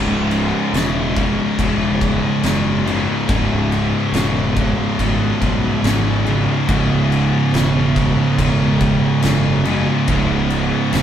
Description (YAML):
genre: stoner and doom metal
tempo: 71 BPM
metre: 4/4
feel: straight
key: C# minor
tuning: A4 = 442 Hz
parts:
  - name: thick fuzz guitar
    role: riff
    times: 0.0-11.0 s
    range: C#2 to C#3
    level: -20 LUFS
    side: left 5 dB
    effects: distortion
  - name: thick fuzz guitar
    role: riff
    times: 0.0-11.0 s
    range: C#2 to C#3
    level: -20 LUFS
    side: right 5 dB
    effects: distortion
  - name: tight distorted guitar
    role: riff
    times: 0.0-11.0 s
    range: C#2 to C#3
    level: -24 LUFS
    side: equal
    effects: distortion
  - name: fuzz fingered electric bass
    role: bass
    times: 0.0-11.0 s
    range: C#1 to B1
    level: -23 LUFS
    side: equal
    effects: overdrive
  - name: oversized low-tuned drum kit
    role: drums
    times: 0.3-11.0 s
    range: crash cymbal, kick drum, snare drum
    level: -22 LUFS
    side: equal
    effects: none
room: light reverb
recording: band playing live in one room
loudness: -15 LUFS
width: side -9 dB against mid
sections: 0.0-11.0 A section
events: none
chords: 0.0 C#m